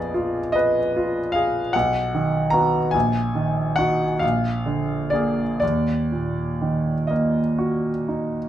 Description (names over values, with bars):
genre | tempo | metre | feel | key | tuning
classical, romantic nocturne for solo piano | 40-51 BPM (dotted quarters) | 9/8 | rubato | Eb minor | A4 = 440 Hz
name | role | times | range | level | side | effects
clear baby grand piano | solo | 0.0-8.5 s | Bb1 to Bb5 | -20 LUFS | equal | none
room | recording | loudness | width
moderate large studio reverb, RT60 0.9 s | none | -19 LUFS | side -11 dB against mid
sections
0.0-8.5 A section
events
none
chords
0.0 Bb7b9; 1.7 B; 2.9 Ebm/Bb; 4.2 Bb7; 5.6 Ebm